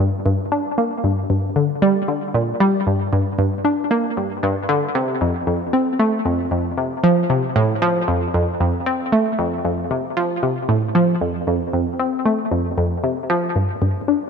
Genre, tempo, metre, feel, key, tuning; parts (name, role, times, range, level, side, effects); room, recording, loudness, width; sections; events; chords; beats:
ambient; 115 BPM; 4/4; straight; A4 = 442 Hz
analog pluck; solo; 0.0-14.3 s; F2 to D4; -17 LUFS; equal; chorus, tape echo
moderate plate reverb, RT60 3.4 s; -17 LUFS; side -6 dB against mid
0.0-14.3 A section
0.52 | 1.04 1.56 2.08 2.60 | 3.12 3.65 4.17 4.69 | 5.21 5.73 6.26 6.78 | 7.30 7.82 8.34 8.86 | 9.39 9.91 10.43 10.95 | 11.47 11.99 12.52 13.04 | 13.56 14.08